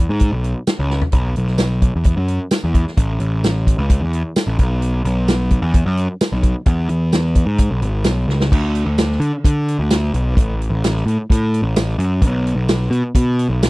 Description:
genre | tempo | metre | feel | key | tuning
classic rock | 130 BPM | 4/4 | straight | unclear | A4 = 440 Hz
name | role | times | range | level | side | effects
fuzz picked electric bass | bass | 0.0-13.7 s | G#1 to D3 | -17 LUFS | equal | overdrive
vintage drum kit | drums | 0.2-13.7 s | crash cymbal, hi-hat, kick drum, snare drum, tambourine, toms | -17 LUFS | equal | none
room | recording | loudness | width
little or no reverb | dry, close 1970s-style studio recording | -15 LUFS | side -22 dB against mid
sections
0.0-8.5 A section; 8.5-13.7 B section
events
drum fill 0.9, 8.3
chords
none

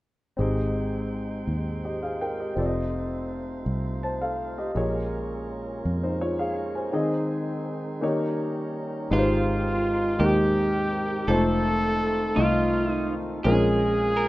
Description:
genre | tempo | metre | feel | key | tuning
gospel | 55 BPM (dotted quarters) | 6/8 | straight | Ab major | A4 = 437 Hz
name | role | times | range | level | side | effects
clear concert grand piano | accompaniment | 0.4-14.3 s | Ab2 to A5 | -26 LUFS | left 1 dB | none
tonewheel organ | sustained chords | 0.4-14.3 s | Eb3 to G5 | -37 LUFS | right 3 dB | overdrive, stopped rotary speaker
fingered electric bass | bass | 0.4-14.3 s | F1 to F2 | -29 LUFS | equal | none
electric slide guitar | melody | 9.1-14.3 s | F4 to Bb4 | -29 LUFS | right 3 dB | none
warm trumpet | melody | 9.1-14.3 s | F4 to A4 | -27 LUFS | equal | slapback echo
room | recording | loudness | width
light reverb, studio reverb | rough home demo mix | -23 LUFS | side -17 dB against mid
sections
0.4-9.1 A section; 9.1-14.3 B section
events
none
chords
0.4 Abmaj7; 2.6 F7; 4.8 Bbm7; 6.9 Ab/Eb; 8.0 Eb7; 9.1 Abmaj7; 11.3 F7; 13.4 Bbm7

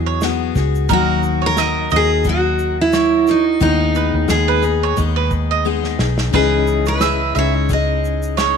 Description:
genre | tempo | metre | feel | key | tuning
acoustic pop | 88 BPM | 4/4 | swing 55% on 16ths | G# minor | A4 = 440 Hz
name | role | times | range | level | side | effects
picked steel-string acoustic guitar | accompaniment | 0.0-8.6 s | C#3 to A#4 | -22 LUFS | left 14 dB | none
vintage muted fingered electric bass | bass | 0.0-8.6 s | B1 to E2 | -20 LUFS | equal | none
bowl-back mandolin | arpeggios | 0.1-8.6 s | A#4 to E5 | -22 LUFS | right 12 dB | none
unplugged drum kit | drums | 0.2-8.6 s | kick drum, shaker, snare drum, splash cymbal | -24 LUFS | equal | none
picked steel-string acoustic guitar | melody | 0.9-8.4 s | D#4 to D#5 | -18 LUFS | right 1 dB | none
reed electric piano | accompaniment | 6.3-8.6 s | C#4 to D#5 | -25 LUFS | left 14 dB | fast tremolo
room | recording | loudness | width
light reverb, small room ambience | 1960s-style stereo with parts hard left and right | -14 LUFS | side -6 dB against mid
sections
0.0-8.6 A section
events
drum fill 5.7-6.3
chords
0.0 Eadd9; 0.9 D#m; 3.6 G#m/D#; 6.3 C#madd9

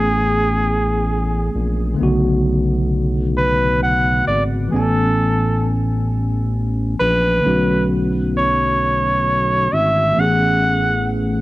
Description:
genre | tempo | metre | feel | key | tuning
R&B | 44 BPM (dotted quarters) | 6/8 | straight | B dorian | A4 = 441 Hz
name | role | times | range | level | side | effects
clear flugelhorn | melody | 0.0-11.1 s | G#4 to F#5 | -18 LUFS | equal | cassette tape
tine electric piano | accompaniment | 0.0-11.4 s | C#3 to G#5 | -21 LUFS | equal | medium stereo tremolo, cassette tape
smooth synth bass | bass | 0.0-11.4 s | G#1 to B1 | -20 LUFS | equal | none
room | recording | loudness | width
small room ambience | home recording on cassette | -15 LUFS | side -18 dB against mid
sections
0.0-11.4 A section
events
none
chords
0.0 Amaj7; 2.0 Bm9; 4.7 Amaj7; 7.4 Bm9; 10.2 Amaj7

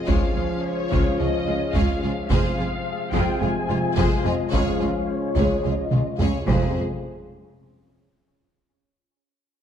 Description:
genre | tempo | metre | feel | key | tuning
cinematic, hybrid orchestral and electronic film score | 108 BPM | 4/4 | straight | unclear | A4 = 440 Hz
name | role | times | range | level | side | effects
warm symphonic violin section | melody | 0.0-6.8 s | Db5 to Ab5 | -30 LUFS | left 4 dB | low-pass filter
chorused pulse-width pad | sustained chords | 0.0-6.8 s | F3 to Ab4 | -32 LUFS | left 1 dB | low-pass filter
mellow French horn section | sustained chords | 0.0-6.7 s | Ab3 to F4 | -31 LUFS | left 7 dB | low-pass filter
mellow trombone section | sustained chords | 0.0-6.7 s | C3 to F3 | -32 LUFS | right 4 dB | low-pass filter
rich symphonic violin section | second line | 0.1-6.8 s | C4 to Db5 | -33 LUFS | left 3 dB | none
warm symphonic viola section | accompaniment | 0.1-6.8 s | Ab3 to F4 | -31 LUFS | right 2 dB | low-pass filter
tight sequenced synth | arpeggios | 0.1-6.4 s | Db3 to F4 | -33 LUFS | left 2 dB | none
rich chamber cello section | bass | 0.1-6.8 s | Db2 to F2 | -29 LUFS | right 2 dB | none
warm symphonic double bass section | bass | 0.1-6.8 s | F1 to Db2 | -27 LUFS | right 3 dB | none
taiko ensemble | drums | 0.1-7.5 s | none | -26 LUFS | equal | none
room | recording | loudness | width
wet recital hall reverb, RT60 1.7 s | dark, warm production | -20 LUFS | side -9 dB against mid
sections
0.0-6.8 A section; 6.8-9.0 B section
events
filter sweep 0.0-6.8; drum fill 5.9-6.8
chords
0.1 Db; 2.3 Fm; 4.5 Db; 6.5 Fm; 6.8 N.C.

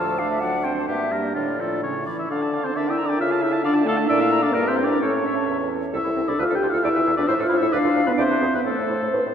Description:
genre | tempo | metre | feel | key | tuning
quick classical-period movement for wind quintet | 124-136 BPM | 2/4 | rubato | D minor, A minor from 5.9 s | A4 = 440 Hz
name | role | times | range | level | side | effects
hollow concert flute | melody | 0.0-9.3 s | A4 to A5 | -28 LUFS | left 3 dB | none
warm oboe | second line | 0.0-9.1 s | F4 to G5 | -26 LUFS | left 2 dB | none
clear clarinet | accompaniment | 0.0-9.3 s | Bb3 to Bb5 | -29 LUFS | right 4 dB | none
mellow French horn | accompaniment | 0.0-9.2 s | C#3 to B4 | -23 LUFS | equal | none
mellow bassoon | bass | 0.0-9.3 s | C2 to D3 | -28 LUFS | right 2 dB | none
room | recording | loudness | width
wet church reverb, RT60 2.9 s | none | -19 LUFS | side -8 dB against mid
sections
0.0-2.3 A section; 2.3-9.3 B section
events
none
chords
0.4 D7; 0.9 Gm; 1.4 Dm/A; 1.8 A; 2.3 Dm; 2.8 Em7b5/D; 3.2 A/C#; 3.6 Dm; 4.1 Bb; 4.5 Em7b5/G; 5.0 A; 5.9 Am/C; 6.4 Bm7b5/D (rootless); 6.8 E7(no3); 7.3 Am; 7.7 Bdim/D; 8.2 E5; 8.7 Am

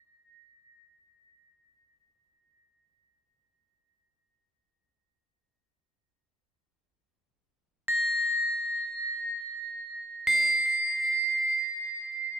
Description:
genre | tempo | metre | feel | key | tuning
world meditative, free-time meditation music | free time | none | none | unclear | A4 = 439 Hz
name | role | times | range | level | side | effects
crotales | solo | 0.0-12.4 s | Bb6 to C7 | -24 LUFS | right 1 dB | ping-pong delay
room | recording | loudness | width
moderate huge ambient reverb, RT60 8.2 s | dark, warm production | -24 LUFS | side -8 dB against mid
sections
0.0-9.6 A section; 9.6-12.4 A section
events
none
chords
none

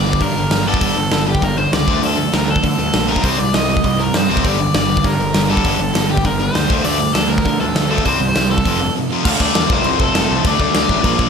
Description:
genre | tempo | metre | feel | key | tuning
punk rock | 199 BPM | 4/4 | straight | G minor | A4 = 440 Hz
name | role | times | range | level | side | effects
overdriven semi-hollow guitar | melody | 0.0-11.3 s | G4 to F5 | -20 LUFS | left 2 dB | tape echo
distorted electric guitar | riff | 0.0-11.3 s | F2 to D4 | -22 LUFS | left 12 dB | overdrive
sludgy distorted guitar | riff | 0.0-11.3 s | F2 to D4 | -21 LUFS | right 11 dB | overdrive
fuzz picked electric bass | bass | 0.0-11.3 s | F1 to D3 | -22 LUFS | equal | overdrive
big rock drum kit | drums | 0.1-11.3 s | crash cymbal, hi-hat, kick drum, snare drum | -18 LUFS | equal | none
room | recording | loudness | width
light reverb | none | -14 LUFS | side -6 dB against mid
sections
0.0-9.3 A section; 9.3-11.3 B section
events
break 9.0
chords
0.0 Gm; 1.9 Dm; 3.2 Cm; 4.4 Gm; 6.7 Dm; 8.1 C5; 8.7 F; 9.3 Dm; 9.7 F; 10.4 D

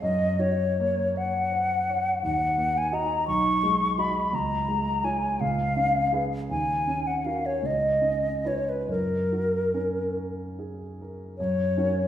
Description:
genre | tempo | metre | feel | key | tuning
classical, romantic duo for flute and grand piano | 46-59 BPM (dotted quarters) | 6/8 | rubato | F# major | A4 = 441 Hz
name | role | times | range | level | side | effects
mellow concert flute | melody | 0.0-12.1 s | A#4 to C#6 | -25 LUFS | left 1 dB | none
warm concert grand piano | accompaniment | 0.0-12.1 s | B1 to D#5 | -28 LUFS | right 1 dB | none
room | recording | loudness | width
wet recital hall reverb, RT60 1.5 s | heard from further back in the room | -23 LUFS | side -10 dB against mid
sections
0.0-11.4 A section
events
none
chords
0.0 Gb; 2.2 D#m; 3.3 G#m7/B; 4.3 C#; 5.4 C#7; 6.5 D#m7; 7.6 C#7; 8.9 F#

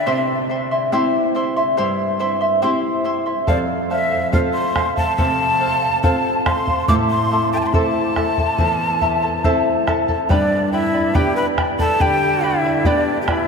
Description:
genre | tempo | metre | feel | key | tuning
andean folk, Andean ensemble | 70 BPM | 4/4 | straight | unclear | A4 = 440 Hz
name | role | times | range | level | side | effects
breathy mellow quena | melody | 0.0-13.5 s | D5 to D6 | -22 LUFS | equal | tape echo
breathy bright large quena | second line | 0.0-13.5 s | D4 to D6 | -25 LUFS | left 2 dB | none
charango | accompaniment | 0.0-13.5 s | E4 to C6 | -21 LUFS | left 1 dB | none
nylon-string guitar | accompaniment | 0.1-13.5 s | E2 to A4 | -23 LUFS | right 1 dB | none
bombo | percussion | 3.5-13.5 s | none | -23 LUFS | equal | none
room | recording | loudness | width
wet cathedral reverb, RT60 7.1 s | dreamy mix soaked in reverb | -16 LUFS | side -5 dB against mid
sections
0.0-10.3 A section; 10.3-13.5 A section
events
none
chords
0.1 C; 3.5 F; 6.9 Am; 10.3 G

